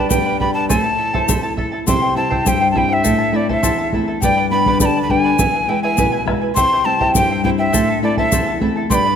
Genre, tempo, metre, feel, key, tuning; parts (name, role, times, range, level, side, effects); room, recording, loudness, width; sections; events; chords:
andean folk, Andean ensemble; 102 BPM; 2/4; straight; A minor; A4 = 439 Hz
breathy bright quena; melody; 0.0-9.2 s; D5 to C6; -18 LUFS; equal
charango; accompaniment; 0.0-9.2 s; E4 to B5; -21 LUFS; right 1 dB
flamenco guitar; accompaniment; 0.0-9.2 s; E2 to E4; -20 LUFS; left 3 dB
bombo; percussion; 0.1-9.0 s; -22 LUFS; right 2 dB
egg shaker; percussion; 0.1-9.0 s; -26 LUFS; left 9 dB
moderate scoring stage reverb, RT60 2.0 s; close, detailed microphones; -14 LUFS; side -8 dB against mid
0.0-1.9 A section; 1.9-9.2 A section
0.0 G; 0.7 Am; 1.9 C; 3.0 Am; 4.2 G; 5.4 E; 6.6 C; 7.7 Am